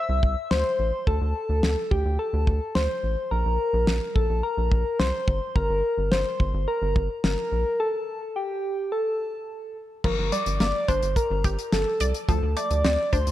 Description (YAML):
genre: synth-pop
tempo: 107 BPM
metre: 4/4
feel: straight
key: unclear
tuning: A4 = 440 Hz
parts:
  - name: soft struck synth lead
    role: melody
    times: 0.0-13.3 s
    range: G4 to E5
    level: -26 LUFS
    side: left 1 dB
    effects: chorus
  - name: rubbery square bass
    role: bass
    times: 0.1-13.3 s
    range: G1 to D2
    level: -25 LUFS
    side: equal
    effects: none
  - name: damped 70s drum kit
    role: drums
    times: 0.2-13.3 s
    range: crash cymbal, hi-hat, kick drum, snare drum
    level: -25 LUFS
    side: equal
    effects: none
  - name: wide unison pluck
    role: arpeggios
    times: 10.0-13.3 s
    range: F3 to D5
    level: -32 LUFS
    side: right 4 dB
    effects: analog delay
room: light reverb, small room ambience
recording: none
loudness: -22 LUFS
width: side -14 dB against mid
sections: 0.0-10.0 A section; 10.0-13.3 B section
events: break 7.8-10.0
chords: 0.0 C; 1.1 D5; 3.3 Bbsus2; 5.6 Gm; 7.8 N.C.; 10.0 Gm; 12.3 Dm7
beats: 0.51 | 1.07 1.63 2.19 2.75 | 3.31 3.88 4.44 5.00 | 5.56 6.12 6.68 7.24 | 7.80 8.36 8.92 9.48 | 10.04 10.60 11.16 11.72 | 12.29 12.85